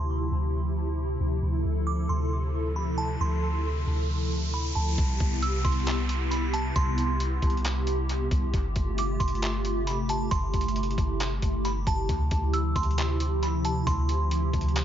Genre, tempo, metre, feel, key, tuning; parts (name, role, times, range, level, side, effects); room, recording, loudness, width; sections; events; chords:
hip hop, atmospheric cloud-rap; 135 BPM; 4/4; half-time; D dorian; A4 = 440 Hz
glassy synth bell; melody; 0.0-14.7 s; A5 to E6; -34 LUFS; right 2 dB; chorus, tremolo, dub echo
hollow soft pad; sustained chords; 0.0-14.8 s; C3 to A4; -31 LUFS; equal; ensemble chorus, sidechain pumping
soft 808-style bass; bass; 0.0-14.8 s; G1 to D2; -28 LUFS; equal
riser and downlifter; sound effects; 2.6-8.5 s; -38 LUFS; right 1 dB
trip hop sampler-style drum kit; drums; 5.0-14.8 s; handclaps, hi-hat, kick drum; -30 LUFS; equal; dub echo
digital ambience; echo-heavy mix, nothing above 7.5 kHz; -25 LUFS; side -10 dB against mid
0.0-5.0 A section; 5.0-14.8 B section
riser 2.6-5.0
0.0 Dm11; 5.0 Cmaj7; 8.5 G9sus4; 12.1 Dm11